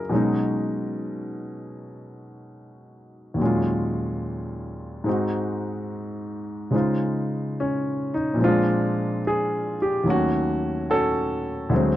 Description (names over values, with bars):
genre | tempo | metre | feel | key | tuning
jazz ballad | 72 BPM | 4/4 | swing 69% on 8ths | unclear | A4 = 440 Hz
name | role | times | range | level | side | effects
warm baby grand piano | solo | 0.0-12.0 s | D2 to D#5 | -22 LUFS | equal | none
room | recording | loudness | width
little or no reverb | dry, close 1970s-style studio recording | -22 LUFS | side -14 dB against mid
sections
0.0-12.0 A section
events
none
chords
0.1 B69; 3.4 D#m11; 5.1 G#7; 6.7 C#maj9; 8.4 A#7; 10.1 D#m7b5